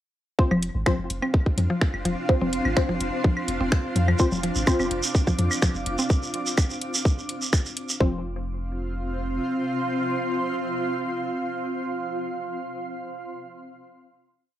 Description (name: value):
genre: minimal techno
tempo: 126 BPM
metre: 4/4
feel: straight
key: unclear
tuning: A4 = 440 Hz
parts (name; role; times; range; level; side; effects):
- filtered dub chord stab; stabs; 0.4-4.7, 8.0-12.2 s; C4 to C5; -28 LUFS; left 1 dB; phaser, analog chorus, cassette tape, tape echo
- electronic kick drum; drums; 0.4-8.1 s; none; -21 LUFS; equal; studio reverb, cassette tape
- granular cloud pad; texture; 1.3-12.5 s; C4 to D6; -29 LUFS; equal; built-in reverb, sidechain pumping, cassette tape
- swarming drone; texture; 1.2-6.1 s; D4; -38 LUFS; right 2 dB; built-in reverb, sidechain pumping, cassette tape
- mallet-like synth pluck; riff; 0.5-8.2 s; F3 to C4; -30 LUFS; equal; chorus, sidechain pumping, cassette tape, analog delay
- punchy sub bass; bass; 0.5-9.4 s; F1 to F2; -28 LUFS; equal; sidechain pumping
- congas and claves; percussion; 0.5-5.6 s; none; -30 LUFS; left 3 dB; studio reverb, cassette tape, tape echo
- garage drum kit; drums; 0.6-7.9 s; finger snaps, hi-hat; -29 LUFS; equal; studio reverb, cassette tape
- shekere; percussion; 4.2-8.0 s; none; -29 LUFS; right 3 dB; none
room: light reverb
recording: home recording on cassette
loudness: -22 LUFS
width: side -12 dB against mid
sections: 0.4-8.0 drop; 8.0-11.8 final chord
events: drop 0.4-8.0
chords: 0.4 F5